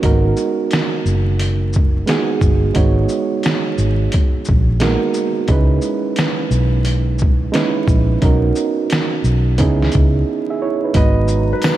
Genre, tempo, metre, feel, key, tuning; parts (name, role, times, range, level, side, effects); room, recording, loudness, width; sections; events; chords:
lo-fi hip hop; 88 BPM; 4/4; swing 64% on 16ths; A4 = 439 Hz
overdriven reed electric piano; accompaniment; 0.0-11.8 s; G#3 to E5; -19 LUFS; right 4 dB
vintage muted fingered electric bass; bass; 0.0-11.5 s; F#1 to C#2; -16 LUFS; equal
trip hop sampler-style drum kit; drums; 0.0-11.8 s; hi-hat, kick drum, shaker, snare drum; -18 LUFS; equal; overdrive, vintage 12-bit sampler grit
deep dark ambient pad; sustained chords; 11.3-11.8 s; F#3 to A#5; -30 LUFS; equal; chorus, built-in reverb
felt-muted upright piano; melody; 11.0-11.8 s; B4 to D#5; -27 LUFS; left 2 dB
tambourine; percussion; 11.6-11.8 s; -34 LUFS; left 11 dB
moderate cathedral reverb, RT60 4.7 s; dreamy mix soaked in reverb, vinyl crackle; -14 LUFS; side -13 dB against mid
0.0-10.9 A section
break 10.3-10.9
0.0 G#m9; 5.5 C#m9; 8.2 Bmaj9; 9.6 C#m9; 10.9 G#m9